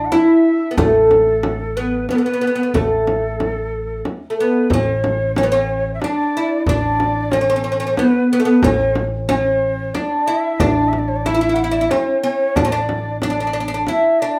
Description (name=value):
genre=Arabic maqam ensemble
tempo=92 BPM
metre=3/4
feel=straight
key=A maqam rast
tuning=A4 = 440 Hz
part: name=oud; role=melody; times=0.0-14.4 s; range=A3 to E4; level=-19 LUFS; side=equal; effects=none
part: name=breathy bright ney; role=second line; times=0.0-14.4 s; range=A4 to F#5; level=-25 LUFS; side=equal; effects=none
part: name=upright bass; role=bass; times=0.0-13.8 s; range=A1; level=-27 LUFS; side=equal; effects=none
part: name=frame drum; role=percussion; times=0.1-14.0 s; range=none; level=-24 LUFS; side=equal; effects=none
room=wet studio reverb, RT60 0.7 s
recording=rough home demo mix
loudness=-17 LUFS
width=mono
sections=0.0-4.7 A section; 4.7-14.4 B section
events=none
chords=none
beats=0.12 | 0.77 1.43 2.08 | 2.74 3.40 4.05 | 4.71 5.36 6.02 | 6.67 7.33 7.98 | 8.64 9.29 9.95 | 10.60 11.26 11.91 | 12.57 13.22 13.88